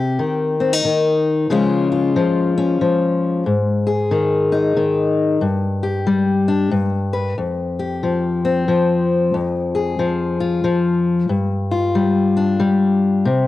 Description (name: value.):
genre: folk, solo fingerstyle acoustic guitar.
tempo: 92 BPM.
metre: 3/4.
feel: swing 62% on 8ths.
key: unclear.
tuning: A4 = 440 Hz.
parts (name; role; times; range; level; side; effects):
fingerpicked steel-string acoustic guitar; solo; 0.0-13.5 s; F2 to B4; -16 LUFS; left 2 dB; none.
room: light reverb, small room ambience.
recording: home recording on cassette.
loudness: -16 LUFS.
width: side -15 dB against mid.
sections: 0.0-13.5 A section.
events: none.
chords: 0.0 Cm; 1.5 Db; 3.5 Ab5; 5.4 G5; 6.7 G; 7.4 Fsus2; 9.3 Fm; 11.3 G5.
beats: 0.19 0.84 | 1.50 2.15 2.80 | 3.46 4.11 4.76 | 5.42 6.07 6.72 | 7.38 8.03 8.69 | 9.34 9.99 10.65 | 11.30 11.96 12.62 | 13.27.